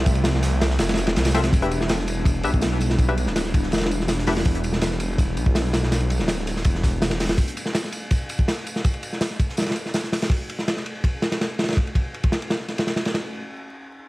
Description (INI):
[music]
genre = drum and bass, jungle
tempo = 164 BPM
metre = 4/4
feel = straight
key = E phrygian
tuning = A4 = 440 Hz
[part]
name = airy breathy pad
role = sustained chords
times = 0.0-7.3 s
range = F3 to E5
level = -30 LUFS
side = equal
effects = chorus
[part]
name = detuned saw bass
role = bass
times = 0.0-7.4 s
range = D1 to C2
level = -24 LUFS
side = equal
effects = tube saturation
[part]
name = crunchy breakbeat drum kit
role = drums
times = 0.1-13.2 s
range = kick drum, ride cymbal, snare drum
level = -22 LUFS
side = equal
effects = none
[part]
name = crunchy breakbeat drum kit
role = drums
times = 0.1-10.2 s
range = hi-hat, snare drum, tambourine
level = -36 LUFS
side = right 2 dB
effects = high-pass filter on hats, high-pass filter on snare, high-pass filter on perc, high-pass filter on room
[part]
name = filtered dub chord stab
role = stabs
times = 1.3-4.3 s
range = C4 to E5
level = -29 LUFS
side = left 3 dB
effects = chorus, dub echo
[sound]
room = small room ambience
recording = vinyl crackle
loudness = -20 LUFS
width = side -19 dB against mid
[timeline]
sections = 0.0-1.5 A section; 1.5-13.2 B section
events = drop 0.0-1.5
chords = 0.0 Fmaj7; 1.5 Em7; 7.4 N.C.